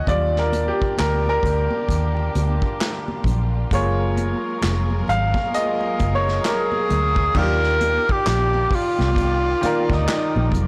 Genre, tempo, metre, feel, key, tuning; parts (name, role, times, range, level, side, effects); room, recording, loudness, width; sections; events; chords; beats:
R&B, neo-soul; 66 BPM; 4/4; swing 60% on 16ths; Eb major; A4 = 441 Hz
bright upright piano; accompaniment; 0.0-10.7 s; Eb3 to F5; -26 LUFS; equal
rich symphonic string section; sustained chords; 0.1-10.7 s; D3 to D5; -36 LUFS; equal
vintage muted fingered electric bass; bass; 0.1-10.7 s; F1 to Eb2; -24 LUFS; equal
unplugged drum kit; drums; 0.1-10.7 s; crash cymbal, handclaps, hi-hat, kick drum, snare drum; -28 LUFS; equal
congas; percussion; 0.1-10.7 s; -35 LUFS; equal
breathy tenor saxophone; melody; 6.5-10.5 s; Eb4 to Bb4; -23 LUFS; equal; slapback echo
light reverb, small room ambience; blown-out, overdriven recording, overdrive; -20 LUFS; mono
0.0-7.4 A section; 7.4-10.7 B section
upright piano solo 0.0-7.4
0.1 Ebmaj9; 3.7 Gbmaj9; 7.4 Ebmaj9
| 0.08 0.99 1.90 2.81 | 3.72 4.62 5.53 6.44 | 7.35 8.26 9.17 10.08